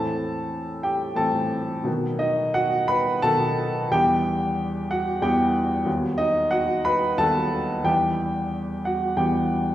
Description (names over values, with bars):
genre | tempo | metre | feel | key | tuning
classical, romantic character piece for solo piano | 90 BPM | 3/4 | uneven beats, rubato | E minor | A4 = 440 Hz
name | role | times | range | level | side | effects
warm upright piano | solo | 0.0-9.7 s | D#2 to B5 | -21 LUFS | equal | none
room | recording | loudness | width
wet recital hall reverb, RT60 1.6 s | heard from further back in the room, nothing above 10.4 kHz | -21 LUFS | side -13 dB against mid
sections
0.0-9.7 A section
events
none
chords
0.0 Am; 1.9 B7; 3.9 Em; 5.9 B7/D#; 7.9 Em